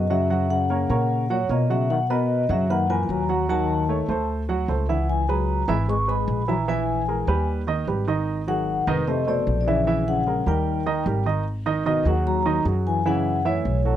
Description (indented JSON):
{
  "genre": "jazz",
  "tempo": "150 BPM",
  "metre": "4/4",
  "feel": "straight",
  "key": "G# minor",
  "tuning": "A4 = 440 Hz",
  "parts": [
    { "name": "vibraphone with soft mallets", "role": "melody", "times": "0.0-14.0 s", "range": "B4 to C#6", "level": "-26 LUFS", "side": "left 2 dB", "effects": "none" },
    { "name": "breathy trombone", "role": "second line", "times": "0.0-14.0 s", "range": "G#2 to G#3", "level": "-28 LUFS", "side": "left 9 dB", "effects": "none" },
    { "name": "warm baby grand piano", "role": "accompaniment", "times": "0.0-14.0 s", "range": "A#2 to F#5", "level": "-26 LUFS", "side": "right 5 dB", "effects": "none" },
    { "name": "upright bass", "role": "bass", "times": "0.0-14.0 s", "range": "E#1 to B2", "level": "-25 LUFS", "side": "equal", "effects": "none" }
  ],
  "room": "light reverb",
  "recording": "dry, close 1970s-style studio recording",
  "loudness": "-20 LUFS",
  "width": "side -11 dB against mid",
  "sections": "0.0-11.5 A section; 11.5-14.0 B section",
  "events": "none",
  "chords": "0.3 F#; 1.9 Bmaj7; 3.5 D#m7b5; 4.3 D7; 5.1 C#m7; 6.7 Emaj7#11/A#; 7.5 D#aug; 8.3 G#5; 9.1 F; 9.9 A#m7b5; 10.7 D#; 11.5 G#sus2; 13.1 F#m7",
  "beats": "| 0.30 0.70 1.10 1.50 | 1.90 2.29 2.69 3.09 | 3.49 3.89 4.29 4.69 | 5.09 5.48 5.88 6.28 | 6.68 7.08 7.48 7.88 | 8.27 8.67 9.07 9.47 | 9.87 10.27 10.67 11.06 | 11.46 11.86 12.26 12.66 | 13.06 13.45 13.85"
}